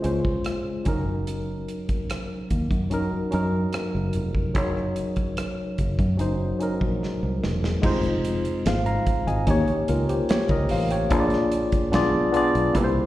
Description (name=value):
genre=lush 1970s-style soul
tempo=73 BPM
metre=4/4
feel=straight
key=unclear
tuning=A4 = 440 Hz
part: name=tine electric piano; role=accompaniment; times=0.0-13.1 s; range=Gb3 to Bb5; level=-24 LUFS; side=left 1 dB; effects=medium stereo tremolo, plate reverb, slapback echo
part: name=fingered electric bass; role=bass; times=0.0-13.1 s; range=Fb1 to Gb2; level=-26 LUFS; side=equal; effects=none
part: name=modern studio drum kit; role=drums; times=0.0-12.9 s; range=crash cymbal, hi-hat, kick drum, rim click, snare drum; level=-27 LUFS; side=equal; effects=none
room=light reverb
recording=live gig heard through the venue's PA, recital hall reverb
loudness=-22 LUFS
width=side -15 dB against mid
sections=0.0-7.8 A section; 7.8-13.1 B section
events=drum fill 7.0-7.8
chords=0.0 Dbmaj7; 0.9 Gb6; 7.8 Fm7; 9.5 Eb7; 11.1 Bb7; 11.9 Cbdim7